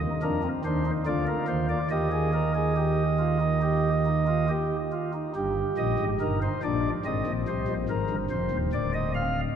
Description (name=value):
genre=classical, baroque-style 3-part fugue for pipe organ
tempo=71 BPM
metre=4/4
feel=straight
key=Eb major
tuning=A4 = 440 Hz
part: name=pipe organ, flutes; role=solo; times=0.0-9.4 s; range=D1 to F5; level=-24 LUFS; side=right 1 dB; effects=none
room=wet cathedral reverb, RT60 4.4 s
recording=dark, warm production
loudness=-24 LUFS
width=side -8 dB against mid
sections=0.0-5.4 A section; 5.4-9.6 B section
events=none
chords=0.2 F5; 1.1 Bb/D; 1.9 Eb; 5.4 Eb/G; 7.1 Fm7/Ab; 8.7 Bb/D (rootless)